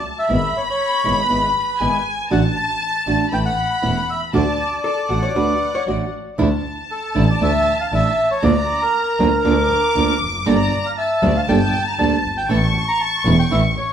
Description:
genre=tango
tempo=118 BPM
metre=4/4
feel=rubato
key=D major, D harmonic minor from 6.4 s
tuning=A4 = 438 Hz
part: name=bandoneon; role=melody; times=0.0-13.9 s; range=A4 to Bb5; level=-21 LUFS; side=equal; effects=none
part: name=dark studio violin section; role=second line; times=0.0-13.9 s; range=F#5 to D6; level=-23 LUFS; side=left 1 dB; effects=none
part: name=nylon-string guitar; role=accompaniment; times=0.3-13.6 s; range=D3 to A4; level=-21 LUFS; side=right 4 dB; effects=none
part: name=clear double bass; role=bass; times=0.3-13.7 s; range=E1 to D2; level=-21 LUFS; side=equal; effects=none
part: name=hollow-body jazz guitar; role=second line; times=4.8-6.4 s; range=A4 to D5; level=-26 LUFS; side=left 4 dB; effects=none
room=moderate large studio reverb, RT60 1.2 s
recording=band playing live in one room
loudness=-16 LUFS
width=side -9 dB against mid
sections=0.0-6.4 A section; 6.4-13.9 B section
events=none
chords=0.3 E/G#; 2.3 D/A; 3.3 A; 4.3 D; 6.4 Dsus2; 8.4 Bb/D; 10.5 Gmadd9; 12.5 A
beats=| 0.29 0.80 1.30 1.81 | 2.31 2.82 3.33 3.83 | 4.34 4.85 5.36 5.87 | 6.39 6.90 7.41 7.92 | 8.44 8.95 9.45 9.96 | 10.47 10.97 11.48 11.99 | 12.49 13.00 13.51

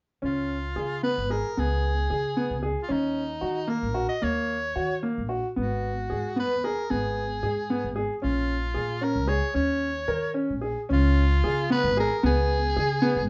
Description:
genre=contemporary instrumental, chamber music in an uneven meter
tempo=225 BPM (eighths)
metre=5/8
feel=straight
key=unclear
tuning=A4 = 440 Hz
part: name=raspy soprano saxophone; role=melody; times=0.2-13.3 s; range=Eb4 to Eb5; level=-32 LUFS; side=equal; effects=none
part: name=clear concert grand piano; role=arpeggios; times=0.2-13.2 s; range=Bb3 to Bb4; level=-30 LUFS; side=equal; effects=none
part: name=upright bass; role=bass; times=0.2-13.3 s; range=Ab1 to Eb3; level=-31 LUFS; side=equal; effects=none
room=moderate studio ambience, RT60 0.5 s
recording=heard from further back in the room, nothing above 7.6 kHz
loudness=-26 LUFS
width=mono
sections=0.2-10.9 A section; 10.9-13.3 A section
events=none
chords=0.2 Db7; 2.9 Ebm7; 5.6 Abm7; 8.2 Bbm7; 9.6 Eb5; 10.9 Db7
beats=| 0.23 0.50 0.77 1.04 1.30 | 1.57 1.84 2.10 2.36 2.63 | 2.89 3.16 3.42 3.69 3.96 | 4.22 4.49 4.76 5.03 5.30 | 5.58 5.84 6.11 6.38 6.65 | 6.91 7.18 7.44 7.71 7.98 | 8.24 8.50 8.77 9.03 9.29 | 9.56 9.82 10.09 10.36 10.63 | 10.91 11.18 11.45 11.71 11.98 | 12.24 12.51 12.77 13.03

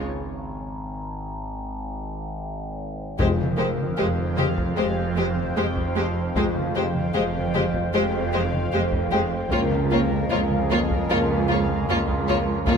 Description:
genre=cinematic, suspense film score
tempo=76 BPM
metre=4/4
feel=straight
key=F minor from 3.2 s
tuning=A4 = 440 Hz
part: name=bubbling stepped-filter texture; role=sustained chords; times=0.0-12.8 s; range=Ab4 to Ab5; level=-31 LUFS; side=left 2 dB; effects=chorus, built-in reverb
part: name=overtone-sweeping drone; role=drone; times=0.0-12.8 s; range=G#1 to F2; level=-30 LUFS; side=equal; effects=chorus, built-in reverb
part: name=clear concert grand piano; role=texture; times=0.0-12.8 s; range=Bb4 to G5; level=-34 LUFS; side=left 4 dB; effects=none
part: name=warm symphonic violin section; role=melody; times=3.2-12.8 s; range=C5 to Db5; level=-32 LUFS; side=left 5 dB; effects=none
part: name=warm symphonic violin section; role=second line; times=3.2-12.7 s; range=F4 to G4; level=-30 LUFS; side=left 3 dB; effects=none
part: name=rich symphonic viola section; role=accompaniment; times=3.2-12.8 s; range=Ab3 to Bb3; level=-29 LUFS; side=right 1 dB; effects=none
part: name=dark French horn section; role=sustained chords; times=3.2-12.8 s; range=Ab3 to G4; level=-30 LUFS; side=left 5 dB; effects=none
part: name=rich studio double bass section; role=bass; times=3.2-12.8 s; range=F1 to Db2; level=-29 LUFS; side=right 4 dB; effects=none
part: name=warm symphonic cello section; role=bass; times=3.2-12.8 s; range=Db2 to F2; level=-28 LUFS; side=right 2 dB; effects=none
part: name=taiko ensemble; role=drums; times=3.2-12.8 s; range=none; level=-30 LUFS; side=left 1 dB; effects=none
part: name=timpani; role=percussion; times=3.2-4.3 s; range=F2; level=-30 LUFS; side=left 1 dB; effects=none
room=moderate scoring stage reverb, RT60 2.1 s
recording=none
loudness=-21 LUFS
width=side -6 dB against mid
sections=0.0-3.2 A section; 3.2-12.8 B section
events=break 0.0-3.2; drum fill 2.4-3.2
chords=0.0 C#5/G#; 3.2 Fmadd9; 9.5 Db6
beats=| 0.04 0.83 1.62 2.41 | 3.19 3.98 4.77 5.56 | 6.35 7.14 7.93 8.72 | 9.51 10.30 11.09 11.88 | 12.67

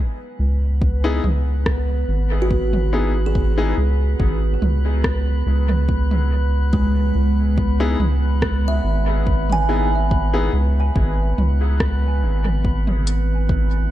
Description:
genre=ambient dub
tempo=71 BPM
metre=4/4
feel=swing 53% on 16ths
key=C# minor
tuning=A4 = 440 Hz
part: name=drifting glass-harmonics texture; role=texture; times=0.1-13.9 s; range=B3 to B4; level=-28 LUFS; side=right 1 dB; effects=chorus, built-in reverb
part: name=round analog bass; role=bass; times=0.4-13.9 s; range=G#1 to C#2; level=-18 LUFS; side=equal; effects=none
part: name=electronic kick drum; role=drums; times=0.8-13.7 s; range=none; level=-21 LUFS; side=equal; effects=none
part: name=bright upright piano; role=stabs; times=1.0-10.5 s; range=B3 to G#4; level=-28 LUFS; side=left 4 dB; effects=dub echo
part: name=organic electronic drum kit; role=drums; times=1.2-13.2 s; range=hi-hat, rim click, toms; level=-28 LUFS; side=right 1 dB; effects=dub echo
part: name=kalimba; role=arpeggios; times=2.4-12.9 s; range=G#3 to G#5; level=-27 LUFS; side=right 2 dB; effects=dub echo
room=light reverb, digital ambience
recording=lossy compression artefacts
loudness=-17 LUFS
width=side -13 dB against mid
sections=0.0-13.9 A section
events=none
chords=0.0 C#m7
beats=0.82 1.66 | 2.51 3.35 4.20 5.04 | 5.89 6.73 7.58 8.42 | 9.27 10.11 10.96 11.80 | 12.65 13.49

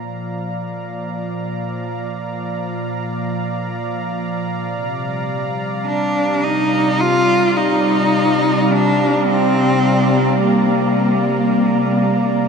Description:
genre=ambient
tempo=52 BPM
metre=4/4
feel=straight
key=unclear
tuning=A4 = 439 Hz
part: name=warm analog pad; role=sustained chords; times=0.0-12.5 s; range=Bb2 to Bb5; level=-18 LUFS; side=equal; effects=chorus
part: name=rich cello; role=melody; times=5.9-12.5 s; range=Bb3 to F4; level=-16 LUFS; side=equal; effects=diffuse ambient delay
room=wet huge ambient reverb, RT60 8.6 s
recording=nothing above 10.5 kHz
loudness=-16 LUFS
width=side -6 dB against mid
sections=0.0-12.5 A section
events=fade-in on analog synth pad 0.0-12.5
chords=0.0 Bb; 4.7 C7sus4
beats=| 0.06 1.21 2.37 3.52 | 4.68 5.83 6.98 8.14 | 9.29 10.45 11.60

